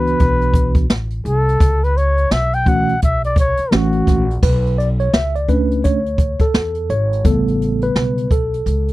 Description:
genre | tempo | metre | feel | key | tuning
hip hop, jazz-hop | 85 BPM | 4/4 | swing 62% on 16ths | B minor | A4 = 440 Hz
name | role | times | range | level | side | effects
breathy flugelhorn | melody | 0.0-4.4 s | F#4 to G5 | -19 LUFS | left 1 dB | none
mellow tine electric piano | accompaniment | 0.0-8.9 s | C#3 to E5 | -19 LUFS | right 1 dB | medium stereo tremolo
upright bass | bass | 0.0-8.9 s | G#1 to E2 | -19 LUFS | equal | none
jazz brush drum kit | drums | 0.1-8.9 s | crash cymbal, hi-hat, kick drum, snare drum | -16 LUFS | equal | none
room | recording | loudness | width
little or no reverb | dry, close 1970s-style studio recording | -14 LUFS | side -17 dB against mid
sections
0.0-4.4 A section; 4.4-8.9 A section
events
flugelhorn solo 0.0-4.4; tine electric piano solo 4.4-8.9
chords
0.0 D69; 1.6 F#m7; 4.4 Bm9; 7.2 A9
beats
0.19 0.90 | 1.60 2.31 3.01 3.72 | 4.42 5.13 5.84 6.54 | 7.25 7.95 8.66

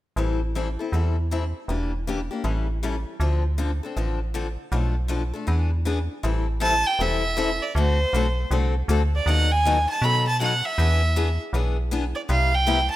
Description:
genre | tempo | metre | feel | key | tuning
acoustic string swing (jazz manouche) | 158 BPM | 4/4 | swing 63% on 8ths | A minor | A4 = 436 Hz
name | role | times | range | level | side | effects
picked steel-string acoustic guitar | accompaniment | 0.2-12.8 s | B2 to A4 | -28 LUFS | left 5 dB | none
metallic FM bass | bass | 0.2-12.9 s | E1 to B2 | -23 LUFS | equal | none
clear violin | melody | 6.6-13.0 s | C5 to B5 | -23 LUFS | right 2 dB | none
room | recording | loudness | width
light reverb, small room ambience | rough home demo mix | -21 LUFS | side -15 dB against mid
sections
0.2-6.2 A section; 6.2-13.0 B section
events
none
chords
0.2 Am7; 1.7 Em7b5; 2.4 A7; 3.2 Dm7; 4.7 Bm7b5; 5.5 E7; 6.2 Am7; 7.8 D7; 9.3 B7/D#; 10.8 E7; 12.3 Cmaj7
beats
| 0.17 0.55 0.93 1.31 | 1.69 2.07 2.45 2.83 | 3.21 3.59 3.97 4.35 | 4.72 5.10 5.48 5.86 | 6.24 6.62 7.00 7.38 | 7.76 8.13 8.51 8.89 | 9.27 9.65 10.03 10.40 | 10.78 11.16 11.54 11.92 | 12.29 12.67

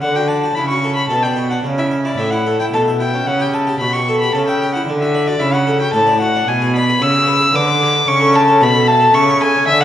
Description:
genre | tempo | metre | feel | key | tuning
classical, baroque-style sonata movement with continuo | 112 BPM | 3/4 | straight | D major, A major from 6.5 s | A4 = 440 Hz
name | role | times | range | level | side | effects
rich violin | melody | 0.0-9.8 s | D5 to E6 | -15 LUFS | left 1 dB | none
harpsichord | accompaniment | 0.0-9.8 s | A2 to E5 | -20 LUFS | left 1 dB | none
warm cello | bass | 0.0-9.8 s | A2 to D3 | -18 LUFS | right 1 dB | none
room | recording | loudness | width
wet scoring stage reverb, RT60 1.9 s | recorded in a church or concert hall, vinyl crackle | -12 LUFS | side -11 dB against mid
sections
0.0-9.8 A section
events
none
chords
0.0 D; 1.6 A; 3.3 A7; 4.9 D; 6.5 E7/B; 8.1 A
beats
| 0.02 0.56 1.10 | 1.64 2.18 2.73 | 3.27 3.81 4.35 | 4.88 5.42 5.95 | 6.49 7.02 7.55 | 8.08 8.61 9.14 | 9.67

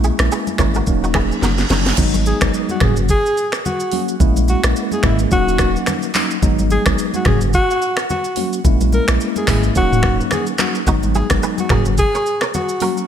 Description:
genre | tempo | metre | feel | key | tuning
afrobeats | 108 BPM | 4/4 | swing 58% on 16ths | G# minor | A4 = 440 Hz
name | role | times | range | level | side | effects
mellow tine electric piano | accompaniment | 0.0-13.0 s | F#3 to F#4 | -21 LUFS | equal | medium stereo tremolo
kora | riff | 0.0-1.8, 10.9-12.9 s | D#4 to C#5 | -25 LUFS | right 4 dB | ping-pong delay
punchy sub bass | bass | 0.0-12.1 s | D#1 to A#1 | -19 LUFS | equal | none
afro-pop drum kit | drums | 0.0-13.1 s | crash cymbal, finger snaps, handclaps, hi-hat, kick drum, rim click, shaker, snare drum, toms | -19 LUFS | equal | gated reverb
congas | percussion | 0.0-13.0 s | none | -28 LUFS | left 3 dB | none
reverse cymbal | sound effects | 1.2-2.0 s | none | -27 LUFS | right 4 dB | none
breathy alto saxophone | melody | 2.3-13.0 s | E4 to A#4 | -21 LUFS | equal | ping-pong delay
room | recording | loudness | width
light reverb, digital ambience | bright 1980s-style digital production | -14 LUFS | side -9 dB against mid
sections
0.0-2.0 A section; 2.0-13.1 B section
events
reverse cymbal 1.2-2.0; drum fill 1.4-2.0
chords
0.0 A#m7b5; 0.9 D#m7; 2.0 G#m7; 2.8 F#; 4.2 A#m7b5; 5.3 D#m7; 6.4 G#m7; 7.3 F#; 8.6 A#m7b5; 9.8 D#m7; 10.9 G#m7; 11.7 F#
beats
0.31 0.87 1.42 | 1.98 2.54 3.09 3.65 | 4.20 4.76 5.31 5.87 | 6.42 6.98 7.54 8.09 | 8.65 9.20 9.76 10.31 | 10.87 11.42 11.98 12.54

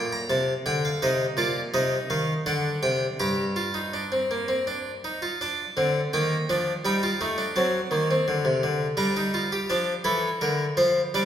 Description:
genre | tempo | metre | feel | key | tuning
classical, baroque-style 3-part fugue for harpsichord | 83 BPM | 3/4 | straight | G minor | A4 = 440 Hz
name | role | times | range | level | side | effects
harpsichord | solo | 0.0-11.3 s | G2 to Bb5 | -23 LUFS | equal | none
room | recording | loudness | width
wet recital hall reverb, RT60 1.8 s | heard from further back in the room | -23 LUFS | side -10 dB against mid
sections
0.0-5.4 A section; 5.4-11.3 B section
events
none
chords
0.3 F/C; 1.0 Cm; 1.7 Cmadd11; 2.4 D7; 3.2 Gm; 5.4 Gm/D; 6.8 F13/G; 7.6 D; 9.0 Gm; 9.7 Dm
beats
0.29 | 1.00 1.72 2.44 | 3.18 3.92 4.65 | 5.39 6.11 6.84 | 7.56 8.27 8.99 | 9.70 10.41 11.13

